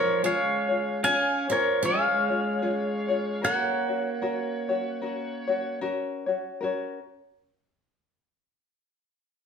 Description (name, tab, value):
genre	Hawaiian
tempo	75 BPM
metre	4/4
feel	swing 58% on 8ths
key	F# major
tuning	A4 = 444 Hz
part	pedal steel guitar	melody	0.0-5.8 s	A#4 to G#5	-26 LUFS	equal	none
part	picked steel-string acoustic guitar	second line	0.0-5.8 s	E#3 to C#4	-30 LUFS	right 2 dB	none
part	tenor ukulele	accompaniment	0.0-7.0 s	C#4 to C#5	-30 LUFS	left 4 dB	none
room	wet large studio reverb, RT60 0.9 s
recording	band playing live in one room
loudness	-24 LUFS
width	side -6 dB against mid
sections	0.0-6.6 A section; 6.6-9.5 B section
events	none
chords	0.2 C#; 3.4 F#